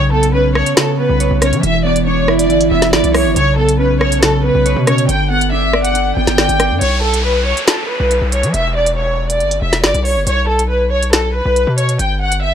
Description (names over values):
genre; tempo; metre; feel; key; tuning
hip hop, drill; 139 BPM; 4/4; half-time; B minor; A4 = 440 Hz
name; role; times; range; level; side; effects
warm studio violin section; melody; 0.0-12.5 s; A4 to G5; -16 LUFS; equal; none
mellow electric guitar; accompaniment; 0.0-6.8 s; C#3 to D5; -16 LUFS; right 2 dB; none
distorted 808-style bass; bass; 0.0-12.5 s; E1 to F#3; -17 LUFS; equal; distortion
drill drum kit; drums; 0.2-12.4 s; hi-hat, rim click, snare drum; -16 LUFS; equal; none
downlifter; sound effects; 6.8-10.3 s; none; -24 LUFS; equal; none
room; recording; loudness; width
little or no reverb; dry, gritty hardware recording; -12 LUFS; side -8 dB against mid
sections
0.0-6.8 A section; 6.8-12.5 B section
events
none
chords
0.0 Bsus2; 1.6 Em7; 3.4 Bsus2; 5.1 G; 6.8 B5; 8.5 Em; 10.3 Aadd9/B; 12.0 Emadd9/G